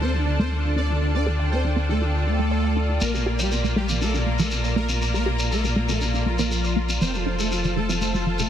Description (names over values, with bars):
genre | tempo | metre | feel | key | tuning
melodic techno | 120 BPM | 4/4 | straight | unclear | A4 = 440 Hz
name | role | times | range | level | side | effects
expressive portamento lead | melody | 0.0-8.5 s | Bb2 to D4 | -28 LUFS | equal | ensemble chorus, digital delay
soft supersaw | second line | 0.0-8.5 s | Bb3 to D5 | -31 LUFS | right 1 dB | ping-pong delay
lush unison pad | sustained chords | 0.0-8.5 s | F4 to Bb5 | -34 LUFS | equal | chorus
wide unison pluck | arpeggios | 0.0-8.5 s | C3 to F5 | -29 LUFS | right 1 dB | ping-pong delay
filtered dub chord stab | stabs | 0.0-8.5 s | Bb2 to F4 | -34 LUFS | right 3 dB | none
round analog bass | bass | 0.0-8.5 s | F1 to D2 | -24 LUFS | equal | none
rich studio string section | texture | 0.0-8.5 s | F4 to Bb5 | -32 LUFS | left 2 dB | none
shekere | percussion | 3.0-8.5 s | none | -29 LUFS | left 2 dB | none
room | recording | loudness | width
light reverb, digital ambience | dense, heavily limited modern master | -20 LUFS | side -10 dB against mid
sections
0.0-8.5 A section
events
filter sweep on analog synth pad 0.0-8.5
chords
0.0 Dm; 3.0 Bb; 7.0 F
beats
0.01 0.51 | 1.01 1.51 2.01 2.51 | 3.01 3.51 4.01 4.51 | 5.01 5.51 6.01 6.51 | 7.01 7.51 8.01